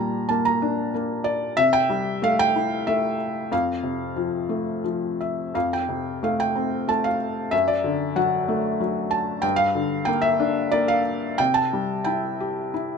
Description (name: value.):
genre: classical, lyrical solo piano.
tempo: 85-95 BPM.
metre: 3/4.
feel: rubato.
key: F major.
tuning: A4 = 440 Hz.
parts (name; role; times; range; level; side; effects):
felt-muted upright piano; solo; 0.0-13.0 s; F2 to Bb5; -21 LUFS; left 1 dB; none.
room: light reverb.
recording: close, detailed microphones.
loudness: -21 LUFS.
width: side -6 dB against mid.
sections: 0.0-5.5 A section; 5.5-13.0 A section.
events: none.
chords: 0.0 Gm/Bb; 1.6 C6; 3.5 F; 7.5 D/F#; 9.4 Gm; 11.4 C.